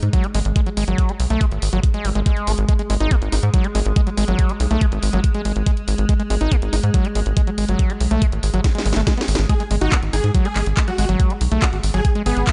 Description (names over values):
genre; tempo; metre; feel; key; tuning
psychedelic trance; 141 BPM; 4/4; straight; G# phrygian; A4 = 440 Hz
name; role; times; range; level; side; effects
evolving wavetable pad; sustained chords; 0.0-12.5 s; G#3; -32 LUFS; equal; chorus, built-in reverb, sidechain pumping
tight sequencer bass; bass; 0.0-12.4 s; G#1 to G#2; -22 LUFS; equal; none
drum and bass drum kit; drums; 0.0-12.5 s; handclaps, hi-hat, snare drum; -29 LUFS; equal; none
overdriven acid bass; riff; 0.1-12.5 s; F#3 to D#4; -27 LUFS; equal; distortion, sidechain pumping, delay
electronic kick drum; drums; 0.1-12.5 s; none; -20 LUFS; equal; none
dense compressed supersaw; melody; 9.5-12.4 s; F#4 to G#4; -29 LUFS; equal; phaser, sidechain pumping, digital delay
room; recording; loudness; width
light reverb; dark, warm production, nothing above 10.3 kHz; -19 LUFS; mono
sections
0.0-12.5 A section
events
drum fill 8.6-9.5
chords
0.0 G#5